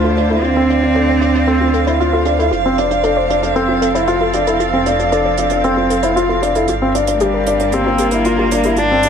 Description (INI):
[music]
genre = piano and strings electronica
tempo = 115 BPM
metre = 4/4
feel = straight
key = unclear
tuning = A4 = 441 Hz
[part]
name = dark cello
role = melody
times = 0.0-2.3, 7.1-9.1 s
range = G3 to D4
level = -17 LUFS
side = right 1 dB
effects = digital delay
[part]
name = dark string quartet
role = sustained chords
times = 0.0-9.1 s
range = D3 to F5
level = -19 LUFS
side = right 4 dB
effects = none
[part]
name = warbly dusty pluck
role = arpeggios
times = 0.0-8.8 s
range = F4 to C5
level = -22 LUFS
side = left 3 dB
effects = chorus, digital delay
[part]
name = dark baby grand piano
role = riff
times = 0.0-9.1 s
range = C4 to F4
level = -17 LUFS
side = left 2 dB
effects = digital delay
[part]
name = dark detuned saw bass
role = bass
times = 0.0-9.1 s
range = F1 to D2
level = -22 LUFS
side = equal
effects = none
[part]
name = hi-hat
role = drums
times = 0.2-9.1 s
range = none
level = -29 LUFS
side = right 8 dB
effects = low-pass filter on hats, low-pass filter on room
[sound]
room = moderate echo chamber reverb, RT60 2.0 s, small room reverb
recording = none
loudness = -12 LUFS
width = side -7 dB against mid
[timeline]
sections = 0.0-9.1 A section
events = filter sweep on drum 0.0-9.1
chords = 0.0 Dm7; 2.5 F; 6.7 Gm7